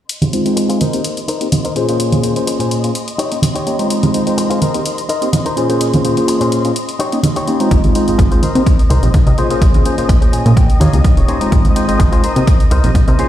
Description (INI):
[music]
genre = filtered disco house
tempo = 126 BPM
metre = 4/4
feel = straight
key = Ab major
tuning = A4 = 438 Hz
[part]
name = muted studio string section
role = sustained chords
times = 0.1-13.3 s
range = Eb5 to Eb6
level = -27 LUFS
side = left 1 dB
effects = sidechain pumping, low-pass filter
[part]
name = electronic hi-hat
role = drums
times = 0.1-13.3 s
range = none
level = -26 LUFS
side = left 3 dB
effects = overdrive
[part]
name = tube shaker and congas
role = percussion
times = 0.1-13.2 s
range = none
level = -19 LUFS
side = right 2 dB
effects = sidechain pumping on perc, low-pass filter on perc
[part]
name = bright tine electric piano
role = accompaniment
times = 0.3-13.3 s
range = Ab3 to Db5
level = -17 LUFS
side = equal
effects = phaser, sidechain pumping, low-pass filter
[part]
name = direct-recorded clean electric guitar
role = riff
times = 0.6-13.3 s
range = Bb2 to Ab5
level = -21 LUFS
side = left 3 dB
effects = sidechain pumping, low-pass filter
[part]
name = plucky analog bass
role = bass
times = 7.7-13.2 s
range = Eb1 to C3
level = -13 LUFS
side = equal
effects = sidechain pumping, low-pass filter
[part]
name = electronic kick drum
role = drums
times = 7.7-13.1 s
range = none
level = -11 LUFS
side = equal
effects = overdrive
[sound]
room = light reverb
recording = played on a big sound system in a bare room, large studio reverb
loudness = -11 LUFS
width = side -12 dB against mid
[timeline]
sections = 0.1-13.3 A section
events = filter sweep 0.1-13.3; clean electric guitar fill 10.1-11.5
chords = 0.1 Ab6; 0.8 Cm7; 1.8 Bbm9; 3.0 Eb7; 3.9 Ab6; 4.6 Cm7; 5.6 Bbm9; 6.8 Eb7; 7.7 Ab6; 8.4 Cm7; 9.4 Bbm9; 10.6 Eb7; 11.5 Ab6; 12.2 Cm7